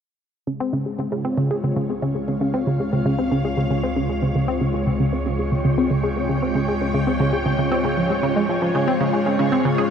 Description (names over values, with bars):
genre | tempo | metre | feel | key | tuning
ambient, sequencer-driven space music | 116 BPM | 4/4 | straight | Db lydian | A4 = 440 Hz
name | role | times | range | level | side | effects
string machine, full ensemble | sustained chords | 0.5-9.9 s | Ab3 to G5 | -24 LUFS | left 1 dB | ensemble chorus
tight sequenced synth | riff | 0.5-9.8 s | Db3 to Ab4 | -21 LUFS | equal | chorus, cassette tape, ping-pong delay
fat analog bass | bass | 0.5-9.9 s | Db2 | -31 LUFS | equal | none
wind-like tuned noise texture | texture | 2.7-9.9 s | Db5 | -32 LUFS | right 4 dB | built-in reverb
room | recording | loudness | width
moderate huge ambient reverb, RT60 9.5 s | dark, warm production | -19 LUFS | side -7 dB against mid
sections
0.5-8.8 A section; 8.8-9.9 B section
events
fade-in on analog synth bass 0.5-8.8; fade-in on synth texture 0.5-8.8; filter sweep on synth arpeggio sound 0.5-8.8; filter sweep on string machine 0.5-8.8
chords
0.5 Db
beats
| 0.48 0.99 1.51 2.03 | 2.54 3.06 3.58 4.10 | 4.61 5.13 5.65 6.17 | 6.68 7.20 7.72 8.23 | 8.75 9.27 9.79